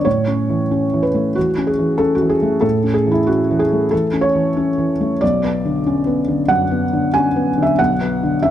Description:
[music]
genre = neoclassical minimalist piano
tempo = 93 BPM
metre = 4/4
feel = rubato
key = unclear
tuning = A4 = 440 Hz
[part]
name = felt-muted upright piano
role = solo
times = 0.0-8.5 s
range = B1 to G#5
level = -15 LUFS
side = equal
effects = none
[sound]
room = light reverb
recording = close, detailed microphones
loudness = -15 LUFS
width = side -11 dB against mid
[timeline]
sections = 0.0-8.5 A section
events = none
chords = 0.1 A; 5.2 Bmadd9

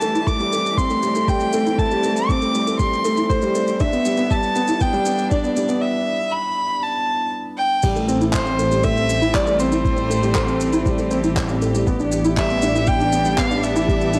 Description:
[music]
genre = piano and strings electronica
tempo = 119 BPM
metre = 4/4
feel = straight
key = A minor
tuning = A4 = 441 Hz
[part]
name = warm violin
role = melody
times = 0.0-14.2 s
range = C5 to D6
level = -24 LUFS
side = equal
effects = cassette tape
[part]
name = rich string quartet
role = sustained chords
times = 0.0-14.2 s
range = E3 to G4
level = -31 LUFS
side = equal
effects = sidechain pumping, cassette tape
[part]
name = felt-muted upright piano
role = riff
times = 0.0-14.2 s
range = G3 to E4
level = -24 LUFS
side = equal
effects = cassette tape
[part]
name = dark detuned saw bass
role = bass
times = 0.0-14.2 s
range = A1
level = -29 LUFS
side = equal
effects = sidechain pumping, high-pass filter
[part]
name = soft brush drum kit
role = drums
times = 0.0-14.2 s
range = crash cymbal, handclaps, shaker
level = -33 LUFS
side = equal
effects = cassette tape
[part]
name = electronic kick drum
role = drums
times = 0.3-14.0 s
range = none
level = -24 LUFS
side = equal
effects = cassette tape
[sound]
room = light reverb, small room ambience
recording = home recording on cassette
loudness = -19 LUFS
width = mono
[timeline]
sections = 0.0-7.8 A section; 7.8-14.2 B section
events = build-up 0.0-7.8; break 5.8-7.8; drop 7.8-14.2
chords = 0.0 Am7; 3.8 Em7/A; 7.8 Am7; 11.9 Em7/A

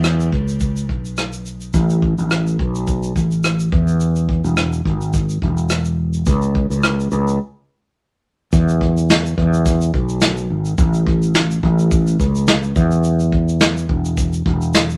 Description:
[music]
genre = acoustic pop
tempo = 106 BPM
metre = 4/4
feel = swing 55% on 16ths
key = E major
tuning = A4 = 439 Hz
[part]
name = fretless electric bass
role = bass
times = 0.0-15.0 s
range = E1 to E2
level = -19 LUFS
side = equal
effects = none
[part]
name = soft brush drum kit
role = drums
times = 0.0-15.0 s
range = kick drum, rim click, shaker, snare drum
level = -21 LUFS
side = equal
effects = none
[sound]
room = light reverb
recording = none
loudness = -18 LUFS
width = mono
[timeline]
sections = 0.0-8.5 A section; 8.5-15.0 B section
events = break 7.4-8.5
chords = none

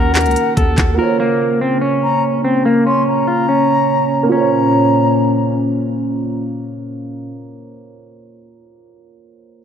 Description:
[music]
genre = hip hop, trap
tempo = 144 BPM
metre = 4/4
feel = half-time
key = Bb minor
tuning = A4 = 440 Hz
[part]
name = electric guitar at the edge of break-up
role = melody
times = 0.0-5.5 s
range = Bb3 to Bb4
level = -17 LUFS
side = right 2 dB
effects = low-pass filter, digital delay
[part]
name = concert flute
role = second line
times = 0.0-5.5 s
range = Gb5 to C6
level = -20 LUFS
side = left 4 dB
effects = digital delay
[part]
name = dark grand piano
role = accompaniment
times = 0.0-9.6 s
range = Eb3 to Db5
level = -22 LUFS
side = right 4 dB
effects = low-pass filter
[part]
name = dark analog pad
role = sustained chords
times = 0.0-7.3 s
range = Bb2 to Gb4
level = -19 LUFS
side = left 2 dB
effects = lush chorus, low-pass filter
[part]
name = long sustained 808-style bass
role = bass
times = 0.0-1.0 s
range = Db2 to Eb2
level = -18 LUFS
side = equal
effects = none
[part]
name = trap drum kit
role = drums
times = 0.2-0.9 s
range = handclaps, hi-hat, kick drum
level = -16 LUFS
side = equal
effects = none
[sound]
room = moderate scoring stage reverb, RT60 2.0 s, studio ambience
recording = none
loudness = -13 LUFS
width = side -8 dB against mid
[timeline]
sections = 0.0-4.3 A section; 4.3-7.7 B section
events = filter sweep 0.0-4.3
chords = 0.0 Ebm7; 1.0 Bbmadd9

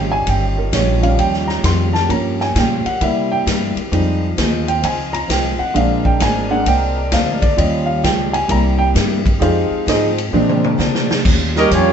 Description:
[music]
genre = jazz, big band swing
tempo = 131 BPM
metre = 4/4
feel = swing 66% on 8ths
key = Eb mixolydian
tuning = A4 = 440 Hz
[part]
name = picked steel-string acoustic guitar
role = accompaniment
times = 0.0-11.9 s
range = Bb2 to Bb4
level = -25 LUFS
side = left 4 dB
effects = none
[part]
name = warm concert grand piano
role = accompaniment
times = 0.0-11.2 s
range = F3 to C6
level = -18 LUFS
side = right 1 dB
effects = none
[part]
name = mellow trombone section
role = sustained chords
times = 0.0-11.9 s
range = Eb3 to Bb4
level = -27 LUFS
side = right 1 dB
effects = none
[part]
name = upright bass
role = bass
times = 0.0-11.9 s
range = G1 to C3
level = -19 LUFS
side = equal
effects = none
[part]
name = swinging big-band drum kit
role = drums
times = 0.3-11.8 s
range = crash cymbal, hi-hat, kick drum, ride cymbal, snare drum, toms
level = -20 LUFS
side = equal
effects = none
[part]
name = warm trumpet section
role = melody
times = 11.6-11.9 s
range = Bb3 to Eb5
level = -15 LUFS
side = equal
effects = none
[part]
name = clear trombone section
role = second line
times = 11.6-11.9 s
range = G3 to Eb4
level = -15 LUFS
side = right 4 dB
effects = none
[sound]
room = wet studio reverb, RT60 0.6 s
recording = band playing live in one room, nothing above 7.9 kHz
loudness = -14 LUFS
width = side -8 dB against mid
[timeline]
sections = 0.0-11.2 A section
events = grand piano solo 0.0-11.2; drum fill 10.3-11.2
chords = 0.0 Eb9; 2.1 Gm7b5; 3.0 C7; 3.9 Fm7; 5.8 Bb9; 7.6 Eb9; 8.5 C7; 9.4 Fm7; 10.3 Bb9; 11.2 Eb9

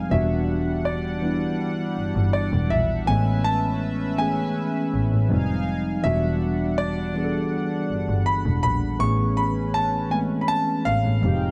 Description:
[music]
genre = contemporary R&B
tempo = 81 BPM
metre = 4/4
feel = straight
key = A major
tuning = A4 = 436 Hz
[part]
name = clear grand piano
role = melody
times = 0.0-11.5 s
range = D5 to C#6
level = -30 LUFS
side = equal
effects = none
[part]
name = mellow tine electric piano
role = accompaniment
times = 0.0-11.5 s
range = E3 to A4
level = -28 LUFS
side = equal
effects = none
[part]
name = chorused pulse-width pad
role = sustained chords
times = 0.0-11.5 s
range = G3 to Ab5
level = -34 LUFS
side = equal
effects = none
[part]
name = clear double bass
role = bass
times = 0.1-11.5 s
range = E1 to A2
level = -27 LUFS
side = equal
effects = none
[sound]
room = light reverb, studio reverb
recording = none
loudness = -23 LUFS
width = mono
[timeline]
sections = 0.0-11.5 A section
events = none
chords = 0.1 Em9; 3.1 Amaj9; 5.3 Fm9; 6.0 Em9; 9.0 Amaj9

